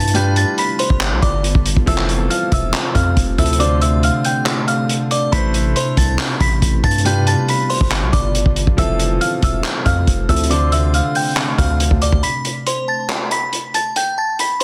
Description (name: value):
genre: hip hop, trap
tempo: 139 BPM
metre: 4/4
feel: half-time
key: A minor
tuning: A4 = 439 Hz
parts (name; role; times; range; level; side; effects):
- delicate synth tine bell; melody; 0.0-14.6 s; C5 to B6; -23 LUFS; equal; chorus, phaser, digital delay
- bright concert grand piano; accompaniment; 0.0-12.3 s; D3 to C5; -26 LUFS; equal; none
- deep dark ambient pad; sustained chords; 0.0-12.2 s; B2 to F4; -27 LUFS; equal; chorus, built-in reverb
- distorted 808-style bass; bass; 0.0-12.2 s; E1 to G2; -20 LUFS; equal; distortion
- vintage drum kit; drums; 0.0-14.6 s; handclaps, hi-hat, kick drum; -21 LUFS; equal; none
room: small room ambience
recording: dense, heavily limited modern master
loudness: -17 LUFS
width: mono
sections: 0.0-12.2 A section; 12.2-14.6 B section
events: kick muted 4.5-5.3; break 12.2-14.6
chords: 0.1 G7; 1.9 Fmaj7; 3.6 Dm7; 5.3 Amadd9; 7.1 G7; 8.8 Fmaj7; 10.5 Dm7; 12.2 Amadd9; 14.0 G